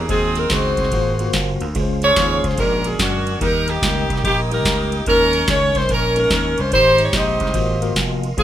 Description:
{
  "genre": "uptempo gospel",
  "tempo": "145 BPM",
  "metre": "4/4",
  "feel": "swing 66% on 8ths",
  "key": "Ab major",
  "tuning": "A4 = 444 Hz",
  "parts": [
    { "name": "edgy saxophone section", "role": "melody", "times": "0.0-8.4 s", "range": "Bb3 to Eb5", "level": "-17 LUFS", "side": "equal", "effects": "plate reverb" },
    { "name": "mellow tonewheel organ", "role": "sustained chords", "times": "0.0-8.4 s", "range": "Ab3 to Eb6", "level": "-31 LUFS", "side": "right 3 dB", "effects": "slow rotary speaker, chorus vibrato, plate reverb" },
    { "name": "vintage slap bass", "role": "bass", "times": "0.0-8.4 s", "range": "F1 to F#2", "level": "-23 LUFS", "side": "equal", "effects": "none" },
    { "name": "tine electric piano", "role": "accompaniment", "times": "0.1-8.4 s", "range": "Ab2 to Eb5", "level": "-27 LUFS", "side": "left 2 dB", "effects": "medium stereo tremolo, plate reverb" },
    { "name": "booming analog drum machine", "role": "drums", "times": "0.1-8.4 s", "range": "kick drum, ride cymbal, snare drum", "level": "-23 LUFS", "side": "equal", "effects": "none" }
  ],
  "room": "moderate studio reverb, RT60 0.6 s",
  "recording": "rough home demo mix",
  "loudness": "-15 LUFS",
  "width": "side -11 dB against mid",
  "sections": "0.0-8.4 A section",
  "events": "none",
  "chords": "0.1 Ab7/Eb; 0.9 Ab13; 1.8 Dbmaj7; 2.6 Bb7alt; 3.4 Eb; 5.1 Eb7sus4; 6.7 Abmaj7; 7.6 Ab13"
}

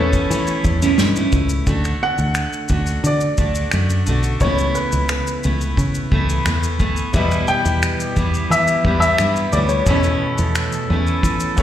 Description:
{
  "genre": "acoustic pop",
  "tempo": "88 BPM",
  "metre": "4/4",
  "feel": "straight",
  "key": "D major",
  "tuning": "A4 = 440 Hz",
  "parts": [
    { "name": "warm upright piano", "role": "melody", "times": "0.0-11.6 s", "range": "B4 to A5", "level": "-21 LUFS", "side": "left 1 dB", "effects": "slapback echo" },
    { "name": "fingerpicked steel-string acoustic guitar", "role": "accompaniment", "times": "0.0-11.6 s", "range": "E2 to F#4", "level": "-22 LUFS", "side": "right 1 dB", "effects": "slapback echo" },
    { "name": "warm grand piano", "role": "accompaniment", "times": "0.0-1.7, 7.1-11.6 s", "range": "B3 to E5", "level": "-28 LUFS", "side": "left 6 dB", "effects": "slapback echo" },
    { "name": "warm brass ensemble", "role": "sustained chords", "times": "0.0-1.6, 7.1-11.6 s", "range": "C#3 to A4", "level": "-29 LUFS", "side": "equal", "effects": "none" },
    { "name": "fingered electric bass", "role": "bass", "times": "0.0-11.6 s", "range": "B1 to E3", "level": "-20 LUFS", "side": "equal", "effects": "none" },
    { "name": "unplugged drum kit", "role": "drums", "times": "0.1-11.6 s", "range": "finger snaps, kick drum, shaker, snare drum", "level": "-22 LUFS", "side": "equal", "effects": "none" }
  ],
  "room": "light reverb",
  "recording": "live gig heard through the venue's PA, recital hall reverb",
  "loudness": "-16 LUFS",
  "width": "side -11 dB against mid",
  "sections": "0.0-1.7 A section; 1.7-11.6 B section",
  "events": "none",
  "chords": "0.0 Aadd9/E; 1.7 D; 4.4 Aadd9/C#; 7.1 Em; 9.9 Aadd9/E"
}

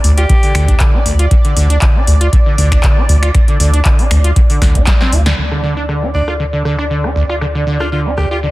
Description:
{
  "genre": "acid house",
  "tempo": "118 BPM",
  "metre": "4/4",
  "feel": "swing 53% on 16ths",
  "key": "D minor",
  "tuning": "A4 = 440 Hz",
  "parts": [
    { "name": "warm analog pad", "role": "sustained chords", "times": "0.0-8.5 s", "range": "D5", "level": "-23 LUFS", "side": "right 1 dB", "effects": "chorus, sidechain pumping" },
    { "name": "acid bass, saw", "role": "riff", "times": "0.0-8.5 s", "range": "D2 to F4", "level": "-18 LUFS", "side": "equal", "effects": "overdrive, lush chorus, cassette tape, sidechain pumping" },
    { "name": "round analog bass", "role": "bass", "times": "0.0-8.5 s", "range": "D2", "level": "-14 LUFS", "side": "equal", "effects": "tube saturation, sidechain pumping" },
    { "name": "electro analog drum machine", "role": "drums", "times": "0.0-8.3 s", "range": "finger snaps, handclaps, hi-hat, rim click, snare drum", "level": "-21 LUFS", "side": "equal", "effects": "low-pass filter on hats, soft clipping on snare, low-pass filter on snare, low-pass filter on room" },
    { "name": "bright alto saxophone", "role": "melody", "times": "0.2-0.9, 6.1-8.4 s", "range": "D4 to G4", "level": "-24 LUFS", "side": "equal", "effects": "dub echo" },
    { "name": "electronic kick drum", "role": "drums", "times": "0.3-5.0 s", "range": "none", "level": "-11 LUFS", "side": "equal", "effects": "none" }
  ],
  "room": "digital ambience",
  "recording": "dense, heavily limited modern master",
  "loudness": "-10 LUFS",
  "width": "side -18 dB against mid",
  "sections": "0.0-5.4 A section; 5.4-8.5 B section",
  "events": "drum fill 4.6-5.4; band accent 5.3; filter sweep on drum 5.4-8.5",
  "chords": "0.0 D5"
}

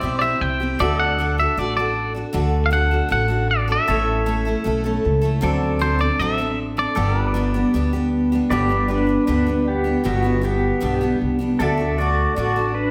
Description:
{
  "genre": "honky-tonk and classic country",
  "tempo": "156 BPM",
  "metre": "4/4",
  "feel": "straight",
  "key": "G major",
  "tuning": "A4 = 440 Hz",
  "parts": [
    { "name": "twangy electric guitar", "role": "second line", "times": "0.0-8.1 s", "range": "C5 to G5", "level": "-25 LUFS", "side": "equal", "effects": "tape echo" },
    { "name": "picked steel-string acoustic guitar", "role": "accompaniment", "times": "0.0-12.9 s", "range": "G2 to A4", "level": "-25 LUFS", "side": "equal", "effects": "none" },
    { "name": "pedal steel guitar", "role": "sustained chords", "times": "0.0-12.9 s", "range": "A4 to E5", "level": "-33 LUFS", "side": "equal", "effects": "none" },
    { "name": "upright bass", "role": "bass", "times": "0.0-12.9 s", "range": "G1 to D2", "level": "-25 LUFS", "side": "equal", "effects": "none" },
    { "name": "pedal steel guitar", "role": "melody", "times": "8.5-12.9 s", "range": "B3 to E5", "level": "-23 LUFS", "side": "equal", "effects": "none" }
  ],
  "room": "wet recital hall reverb, RT60 1.4 s",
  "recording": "none",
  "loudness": "-20 LUFS",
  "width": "mono",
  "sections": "0.0-8.5 A section; 8.5-12.9 B section",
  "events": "clean electric guitar solo 0.0-8.5",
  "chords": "0.0 C; 0.8 D; 3.9 A; 5.4 D7; 7.0 G; 11.6 D"
}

